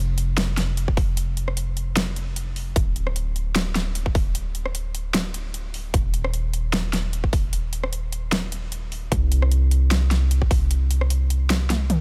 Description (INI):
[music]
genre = future bass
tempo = 151 BPM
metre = 4/4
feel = swing 54% on 16ths, half-time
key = unclear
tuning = A4 = 441 Hz
[part]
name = long sustained 808-style bass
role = bass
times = 0.0-12.0 s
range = D1 to C2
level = -25 LUFS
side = equal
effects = sidechain pumping
[part]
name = big-room dance drum kit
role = drums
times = 0.2-12.0 s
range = hi-hat, rim click, snare drum, toms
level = -28 LUFS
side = equal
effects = overdrive, small room reverb
[part]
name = electronic kick drum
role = drums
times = 0.9-10.6 s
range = none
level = -24 LUFS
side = equal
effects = overdrive, small room reverb
[sound]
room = little or no reverb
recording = none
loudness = -23 LUFS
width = mono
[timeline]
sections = 0.0-12.0 A section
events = kick drops out 11.5-12.0; drum fill 11.7-12.0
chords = none